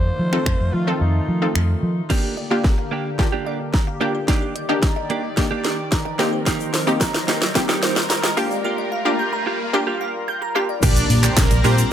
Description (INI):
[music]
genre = dance-pop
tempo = 110 BPM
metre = 4/4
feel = straight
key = Bb major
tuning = A4 = 440 Hz
[part]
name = raspy alto saxophone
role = melody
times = 0.0-1.8 s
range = Eb4 to C5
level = -30 LUFS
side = equal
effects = ping-pong delay
[part]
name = chorused pulse-width pad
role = sustained chords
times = 0.0-11.9 s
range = D3 to Bb5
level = -28 LUFS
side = left 1 dB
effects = sidechain pumping
[part]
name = vintage muted fingered electric bass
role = bass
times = 0.0-2.0, 10.8-11.8 s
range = Bb1 to F3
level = -19 LUFS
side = equal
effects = sidechain pumping
[part]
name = wide unison pluck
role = accompaniment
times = 0.3-11.9 s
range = G3 to A4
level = -24 LUFS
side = left 1 dB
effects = sidechain pumping
[part]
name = house drum kit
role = drums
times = 0.3-11.9 s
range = crash cymbal, finger snaps, handclaps, hi-hat, kick drum, shaker, snare drum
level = -20 LUFS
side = equal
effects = none
[part]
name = glassy wavetable pluck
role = arpeggios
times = 2.1-10.8 s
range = Bb3 to G6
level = -28 LUFS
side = right 1 dB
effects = chorus, sidechain pumping, ping-pong delay
[part]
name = direct-recorded clean electric guitar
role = riff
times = 2.1-11.8 s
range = Bb3 to G4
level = -27 LUFS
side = right 6 dB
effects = wide subtle chorus
[part]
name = riser and impact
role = sound effects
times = 4.5-11.9 s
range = none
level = -30 LUFS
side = equal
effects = none
[part]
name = egg shaker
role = percussion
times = 6.5-11.9 s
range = none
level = -34 LUFS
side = left 14 dB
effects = none
[part]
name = supersaw pad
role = melody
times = 10.8-11.7 s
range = Bb3 to D5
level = -23 LUFS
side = right 1 dB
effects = sidechain pumping
[sound]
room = light reverb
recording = high-pass filter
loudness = -18 LUFS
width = side -10 dB against mid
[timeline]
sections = 0.0-2.1 A section; 2.1-10.8 B section; 10.8-11.9 C section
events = kick muted 1.0-2.1; build-up 2.1-10.8; drum fill 2.1-8.6; filter sweep 2.1-10.8; riser 4.5-10.8; break 8.6-10.8; drop 10.8-11.9; impact 10.8-11.9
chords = 0.0 F7; 2.1 Bb6; 4.3 Ebmaj7; 6.2 Cm7; 8.4 Gm7; 10.8 Bb6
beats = 0.46 1.01 1.55 | 2.10 2.65 3.19 3.74 | 4.28 4.83 5.37 5.92 | 6.46 7.01 7.55 8.10 | 8.65 9.19 9.74 10.28 | 10.83 11.37 11.92